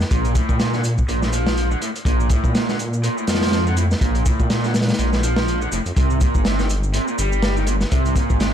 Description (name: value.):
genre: breakbeat, breaks.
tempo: 123 BPM.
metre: 4/4.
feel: swing 57% on 16ths.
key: unclear.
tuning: A4 = 442 Hz.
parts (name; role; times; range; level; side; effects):
detuned saw bass; bass; 0.0-8.5 s; F1 to Bb2; -21 LUFS; equal; none.
crunchy breakbeat drum kit; drums; 0.0-8.5 s; hi-hat, kick drum, snare drum; -20 LUFS; equal; none.
shaker; drums; 0.0-8.5 s; none; -35 LUFS; right 2 dB; none.
raw garage guitar; riff; 0.1-8.5 s; A2 to G3; -23 LUFS; right 1 dB; overdrive, tube saturation.
room: light reverb, studio reverb.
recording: dark, warm production.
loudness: -17 LUFS.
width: side -9 dB against mid.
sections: 0.0-8.5 A section.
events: none.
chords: 0.0 Bb5; 6.0 C7(no3).